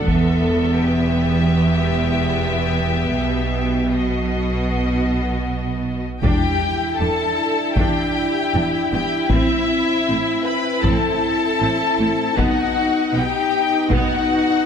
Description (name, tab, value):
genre	cinematic, epic orchestral film score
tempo	78 BPM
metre	4/4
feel	straight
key	E minor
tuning	A4 = 444 Hz
part	rich symphonic violin section	melody	0.0-14.7 s	D#5 to B5	-24 LUFS	left 6 dB	none
part	rich symphonic violin section	second line	0.0-14.7 s	E4 to B4	-25 LUFS	left 2 dB	none
part	rich symphonic viola section	accompaniment	0.0-14.7 s	A3 to E4	-24 LUFS	equal	none
part	clear symphonic cello section	bass	0.0-14.0 s	E2 to B2	-24 LUFS	right 2 dB	none
part	rich symphonic double bass section	bass	0.0-14.0 s	E1 to B1	-24 LUFS	right 2 dB	none
part	taiko ensemble	drums	0.1-1.6, 6.2-14.7 s	none	-22 LUFS	left 1 dB	none
part	mellow French horn section	sustained chords	6.2-14.7 s	B3 to E4	-24 LUFS	equal	none
part	timpani	percussion	6.2-7.3 s	E2	-25 LUFS	equal	none
room	moderate scoring stage reverb, RT60 1.6 s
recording	none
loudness	-17 LUFS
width	side -7 dB against mid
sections	0.0-6.2 A section; 6.2-14.7 B section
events	build-up 0.0-6.2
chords	0.1 Em; 3.2 B; 6.2 Em7; 9.3 Am; 12.4 B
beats	| 0.08 0.85 1.62 2.39 | 3.16 3.93 4.70 5.47 | 6.24 7.00 7.77 8.54 | 9.31 10.08 10.85 11.62 | 12.39 13.16 13.93